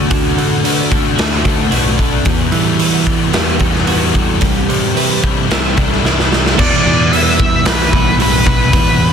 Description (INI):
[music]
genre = rock, shoegaze and dream pop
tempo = 111 BPM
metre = 4/4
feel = straight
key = E minor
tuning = A4 = 438 Hz
[part]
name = picked plugged-in twelve-string acoustic guitar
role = arpeggios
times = 0.0-6.6 s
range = F#4 to B4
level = -26 LUFS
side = right 13 dB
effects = wide subtle chorus, tape echo
[part]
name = thick fuzz guitar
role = riff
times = 0.0-9.1 s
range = E2 to F#4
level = -18 LUFS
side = left 14 dB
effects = distortion, ensemble chorus
[part]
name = twelve-string electric guitar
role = riff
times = 0.0-9.1 s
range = E2 to F#4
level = -20 LUFS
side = right 12 dB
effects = reverse reverb
[part]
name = modern bright picked electric bass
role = bass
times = 0.0-9.1 s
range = B1 to E3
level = -18 LUFS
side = equal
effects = none
[part]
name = raw garage drum kit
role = drums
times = 0.1-8.9 s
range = crash cymbal, hi-hat, kick drum, snare drum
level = -14 LUFS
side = equal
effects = none
[part]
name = octave-fuzz lead guitar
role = melody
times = 6.6-9.1 s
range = B4 to E5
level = -16 LUFS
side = left 1 dB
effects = distortion, tape echo
[sound]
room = small room ambience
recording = dense, heavily limited modern master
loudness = -11 LUFS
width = side -7 dB against mid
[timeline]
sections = 0.0-6.6 A section; 6.6-9.1 A section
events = drum fill 6.0-6.6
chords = 0.0 D; 2.3 Emadd9; 4.4 Cadd9; 6.6 Em